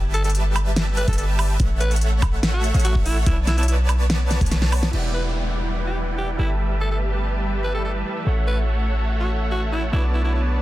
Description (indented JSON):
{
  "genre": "future bass",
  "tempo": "144 BPM",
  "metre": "4/4",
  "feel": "half-time",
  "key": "E dorian",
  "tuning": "A4 = 440 Hz",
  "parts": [
    { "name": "supersaw chords", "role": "riff", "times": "0.0-10.6 s", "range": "G3 to A5", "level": "-28 LUFS", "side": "right 1 dB", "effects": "lush chorus, sidechain pumping, low-pass filter, digital delay" },
    { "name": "warm 808-style bass", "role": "bass", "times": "0.0-10.6 s", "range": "E1 to B1", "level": "-21 LUFS", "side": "equal", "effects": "sidechain pumping" },
    { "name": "raspy alto saxophone", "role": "melody", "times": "0.1-10.4 s", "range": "E4 to B4", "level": "-30 LUFS", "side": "equal", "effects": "sidechain pumping, digital delay" },
    { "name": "pop drum kit", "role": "drums", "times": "0.1-5.0 s", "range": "crash cymbal, hi-hat, snare drum, woodblock", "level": "-26 LUFS", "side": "equal", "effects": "studio reverb" },
    { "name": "electronic kick drum", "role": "drums", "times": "1.1-4.5 s", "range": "none", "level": "-21 LUFS", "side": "equal", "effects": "studio reverb" },
    { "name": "bright concert grand piano", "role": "accompaniment", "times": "4.9-10.6 s", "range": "E3 to C#6", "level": "-35 LUFS", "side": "right 4 dB", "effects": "vintage 12-bit sampler grit, sidechain pumping, digital delay" },
    { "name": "muted symphonic string section", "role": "sustained chords", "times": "4.9-10.6 s", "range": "D3 to G4", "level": "-36 LUFS", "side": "left 1 dB", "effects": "sidechain pumping" },
    { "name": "downlifter", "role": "sound effects", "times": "4.9-8.3 s", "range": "none", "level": "-35 LUFS", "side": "left 1 dB", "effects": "none" }
  ],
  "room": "digital ambience",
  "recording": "dense, heavily limited modern master",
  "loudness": "-19 LUFS",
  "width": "side -16 dB against mid",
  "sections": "0.0-4.9 A section; 4.9-10.6 B section",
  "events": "drop 0.0-4.9; drum fill 4.3-4.9; band accent 4.8; filter sweep on supersaw synth 4.9-10.6",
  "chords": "0.0 G69; 1.6 F#m7/A; 3.3 Bm9; 4.9 Em9; 6.4 G69; 8.3 F#m7/A; 9.9 Bm9"
}